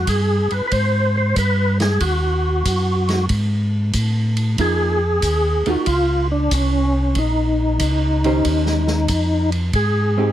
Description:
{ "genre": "soul jazz organ trio", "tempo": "93 BPM", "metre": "4/4", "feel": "swing 68% on 8ths", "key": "unclear", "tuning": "A4 = 440 Hz", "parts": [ { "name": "percussive tonewheel organ", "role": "melody", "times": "0.0-10.3 s", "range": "Db4 to C5", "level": "-20 LUFS", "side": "equal", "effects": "slow rotary speaker, overdrive, chorus vibrato" }, { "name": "mellow tonewheel organ", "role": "bass", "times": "0.0-10.3 s", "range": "Bb1 to A2", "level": "-19 LUFS", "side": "equal", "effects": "slow rotary speaker" }, { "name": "vintage drum kit", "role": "drums", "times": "0.1-9.9 s", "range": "hi-hat, kick drum, ride cymbal, snare drum", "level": "-26 LUFS", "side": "equal", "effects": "none" }, { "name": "hollow-body jazz guitar", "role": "accompaniment", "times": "4.6-10.3 s", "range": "Eb3 to C5", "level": "-23 LUFS", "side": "right 4 dB", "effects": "none" } ], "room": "light reverb", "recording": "dark, warm production", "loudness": "-16 LUFS", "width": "side -12 dB against mid", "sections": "0.0-10.3 A section", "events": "none", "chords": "0.0 Fmadd9 (rootless); 2.0 Ebm; 3.3 N.C.; 4.6 Db69; 7.2 Bbm; 8.5 Eb13; 9.7 Abmaj7", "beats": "0.08 0.72 1.37 | 2.01 2.65 3.30 3.94 | 4.59 5.23 5.88 6.52 | 7.16 7.81 8.45 9.10 | 9.74" }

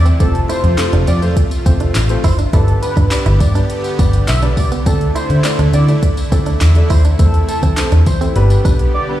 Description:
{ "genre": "dance-pop", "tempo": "103 BPM", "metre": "4/4", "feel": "straight", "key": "unclear", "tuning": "A4 = 438 Hz", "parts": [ { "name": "octave-doubled lead", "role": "melody", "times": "0.0-9.1 s", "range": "A4 to E5", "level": "-23 LUFS", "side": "right 1 dB", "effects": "chorus, sidechain pumping, tape echo" }, { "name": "warm grand piano", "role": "accompaniment", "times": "0.0-9.2 s", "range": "G3 to D5", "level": "-23 LUFS", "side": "left 2 dB", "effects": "sidechain pumping" }, { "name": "supersaw pad", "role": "sustained chords", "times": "0.0-9.2 s", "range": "C3 to G4", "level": "-25 LUFS", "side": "right 1 dB", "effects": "sidechain pumping" }, { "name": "vintage muted picked electric bass", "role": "bass", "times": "0.0-8.9 s", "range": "F1 to E3", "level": "-13 LUFS", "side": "equal", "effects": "sidechain pumping" }, { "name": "direct-recorded clean electric guitar", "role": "riff", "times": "0.1-8.8 s", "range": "A3 to E4", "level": "-26 LUFS", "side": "right 9 dB", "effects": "lush chorus" }, { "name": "smooth R&B drum kit", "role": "drums", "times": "0.1-8.9 s", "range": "handclaps, hi-hat, kick drum, snare drum", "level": "-16 LUFS", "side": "equal", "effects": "overdrive" }, { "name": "tambourine", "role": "percussion", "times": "0.1-8.8 s", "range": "none", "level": "-32 LUFS", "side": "left 4 dB", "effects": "none" } ], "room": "little or no reverb", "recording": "played on a big sound system in a bare room, stone room reverb", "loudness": "-11 LUFS", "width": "side -13 dB against mid", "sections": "0.0-9.2 A section", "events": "break 8.9", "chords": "0.2 F; 2.5 G; 4.9 Dsus2; 7.2 Am/E; 8.4 G", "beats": "| 0.20 0.79 1.37 1.95 | 2.53 3.12 3.70 4.28 | 4.86 5.45 6.03 6.61 | 7.19 7.78 8.36 8.94" }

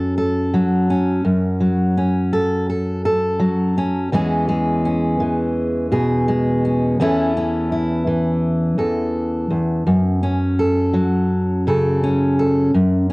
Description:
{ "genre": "folk", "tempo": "84 BPM", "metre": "4/4", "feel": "straight", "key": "unclear", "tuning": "A4 = 440 Hz", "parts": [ { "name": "fingerpicked steel-string acoustic guitar", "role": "solo", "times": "0.0-13.1 s", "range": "E2 to A4", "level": "-16 LUFS", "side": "equal", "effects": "cassette tape" } ], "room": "moderate spring reverb, RT60 1.2 s, small room ambience", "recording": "home recording on cassette", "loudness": "-16 LUFS", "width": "side -25 dB against mid", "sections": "0.0-4.1 A section; 4.1-13.1 B section", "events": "none", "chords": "0.0 F#m; 4.1 E6; 7.0 A/E; 9.9 F#m", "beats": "0.54 | 1.26 1.97 2.69 3.41 | 4.13 4.85 5.57 6.28 | 7.00 7.72 8.44 9.15 | 9.87 10.59 11.30 12.02 | 12.74" }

